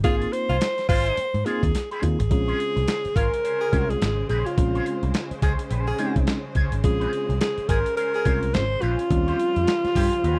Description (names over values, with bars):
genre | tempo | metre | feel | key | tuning
funk | 106 BPM | 4/4 | swing 60% on 16ths | unclear | A4 = 441 Hz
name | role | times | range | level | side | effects
breathy alto saxophone | melody | 0.0-10.4 s | F4 to C5 | -27 LUFS | equal | none
breathy tenor saxophone | second line | 0.0-10.1 s | F4 to Ab4 | -34 LUFS | equal | none
electric guitar with an envelope filter | accompaniment | 0.0-10.4 s | Db4 to C5 | -36 LUFS | equal | wah, vibrato effect
reed electric piano | stabs | 0.0-9.6 s | G3 to F4 | -32 LUFS | equal | fast tremolo
vintage muted picked electric bass | bass | 0.0-10.4 s | Ab1 to Ab2 | -28 LUFS | equal | none
boom bap sampler-style drum kit | drums | 0.0-10.4 s | hi-hat, kick drum, snare drum, toms | -28 LUFS | equal | none
clear studio string section | sustained chords | 2.3-10.4 s | Db3 to C5 | -38 LUFS | equal | none
room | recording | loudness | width
little or no reverb | dry, close 1970s-style studio recording, tape saturation | -23 LUFS | mono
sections
0.0-2.3 A section; 2.3-10.4 B section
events
alto saxophone solo 0.0-2.3; band accent 0.0-2.3; drum fill 1.7-2.3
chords
0.0 Ab6; 2.3 Bbm9; 9.1 Eb13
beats
| 0.04 0.61 1.17 1.74 | 2.31 2.88 3.44 4.01 | 4.58 5.14 5.71 6.28 | 6.84 7.41 7.97 8.54 | 9.11 9.67 10.24